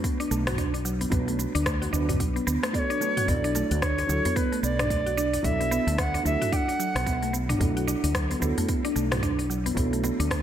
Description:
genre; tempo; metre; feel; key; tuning
organic downtempo; 111 BPM; 4/4; swing 59% on 16ths; unclear; A4 = 443 Hz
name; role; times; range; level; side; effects
felt-muted upright piano; accompaniment; 0.0-10.4 s; F#3 to B4; -34 LUFS; right 1 dB; sidechain pumping, digital delay
mallet-like synth pluck; arpeggios; 0.0-10.4 s; F#3 to F#4; -29 LUFS; right 1 dB; chorus, digital delay, slapback echo
deep house drum kit; drums; 0.0-10.4 s; cabasa, hi-hat, rim click, toms; -32 LUFS; equal; small room ambience
electronic kick drum; drums; 0.0-10.4 s; none; -30 LUFS; equal; small room ambience
woody fretless electric bass; bass; 0.3-10.4 s; B1 to D2; -29 LUFS; equal; none
djembe; percussion; 0.3-10.2 s; none; -36 LUFS; equal; none
bright Native American-style cedar flute; melody; 2.7-7.3 s; B4 to G5; -29 LUFS; right 1 dB; tape echo, slapback echo
room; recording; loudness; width
moderate recital hall reverb, RT60 1.3 s, digital ambience; big arena sound; -23 LUFS; side -10 dB against mid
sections
0.0-10.4 A section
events
none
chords
0.0 Bm; 3.3 Dadd9/B

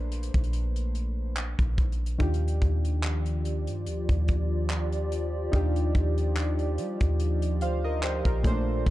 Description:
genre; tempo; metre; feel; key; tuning
contemporary R&B; 72 BPM; 4/4; swing 54% on 16ths; Eb lydian; A4 = 440 Hz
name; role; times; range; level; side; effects
warm analog keys; accompaniment; 0.0-8.9 s; Bb2 to F5; -34 LUFS; equal; chorus
clean 808-style bass; bass; 0.0-8.9 s; Bb1 to G3; -27 LUFS; equal; none
crisp fusion drum kit; drums; 0.1-8.9 s; handclaps, hi-hat, kick drum; -28 LUFS; equal; vintage 12-bit sampler grit
hollow soft pad; sustained chords; 2.2-8.9 s; Bb2 to D5; -34 LUFS; equal; chorus
room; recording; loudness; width
little or no reverb; dark, warm production; -25 LUFS; side -16 dB against mid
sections
0.0-8.9 A section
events
none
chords
0.0 Bbmaj9; 2.2 Ebmaj9

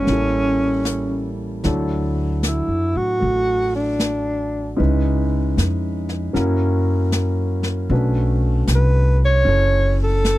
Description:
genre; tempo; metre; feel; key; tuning
jazz ballad; 77 BPM; 4/4; swing 66% on 8ths; D major; A4 = 438 Hz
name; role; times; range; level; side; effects
warm alto saxophone; melody; 0.0-10.4 s; C#4 to C#5; -20 LUFS; right 1 dB; none
warm concert grand piano; accompaniment; 0.0-10.4 s; F#3 to C#5; -24 LUFS; equal; none
upright bass; bass; 0.0-10.4 s; F#1 to A2; -20 LUFS; equal; none
jazz brush drum kit; drums; 0.1-10.4 s; brushed snare drum, hi-hat, snare drum; -25 LUFS; left 1 dB; none
room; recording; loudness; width
little or no reverb; dry, close 1970s-style studio recording; -17 LUFS; side -16 dB against mid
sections
0.0-1.6 A section; 1.6-10.4 B section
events
alto saxophone solo 1.6-10.4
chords
0.1 A7b9; 1.6 Dmaj9; 4.8 C#m7; 6.4 F#7; 7.9 Bm9

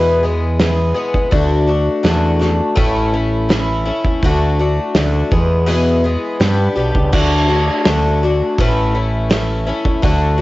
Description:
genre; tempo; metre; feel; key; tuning
folk rock and heartland rock; 83 BPM; 4/4; straight; A major; A4 = 440 Hz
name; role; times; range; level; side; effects
picked twelve-string acoustic guitar; accompaniment; 0.0-10.4 s; E2 to G#4; -17 LUFS; left 2 dB; none
growling FM bass; bass; 0.0-10.4 s; A1 to G2; -17 LUFS; equal; none
loose indie drum kit; drums; 0.6-10.2 s; crash cymbal, hi-hat, kick drum, snare drum; -18 LUFS; right 1 dB; cassette tape
room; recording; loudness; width
light reverb; home recording on cassette, nothing above 7.7 kHz; -13 LUFS; side -18 dB against mid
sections
0.0-7.1 A section; 7.1-10.4 A section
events
none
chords
0.0 E; 1.3 D; 2.8 A; 4.2 D; 5.3 E; 6.4 G; 7.1 D; 8.6 A

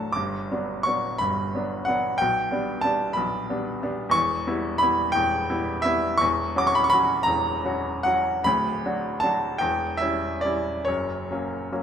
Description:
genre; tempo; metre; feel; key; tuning
classical, romantic nocturne for solo piano; 45-63 BPM (dotted quarters); 12/8; rubato; unclear; A4 = 440 Hz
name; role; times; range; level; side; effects
bright upright piano; solo; 0.0-11.8 s; D1 to D6; -22 LUFS; equal; none
room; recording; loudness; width
moderate recital hall reverb, RT60 1.8 s; minimal, uncompressed stereo recording, lossy compression artefacts; -22 LUFS; side -8 dB against mid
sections
0.0-11.8 A section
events
none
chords
0.2 Gmaj7; 2.2 G/B; 4.2 C#m7b5/E; 6.2 F#7/E; 8.5 Bm/D; 9.6 C#dim/E; 10.9 F#

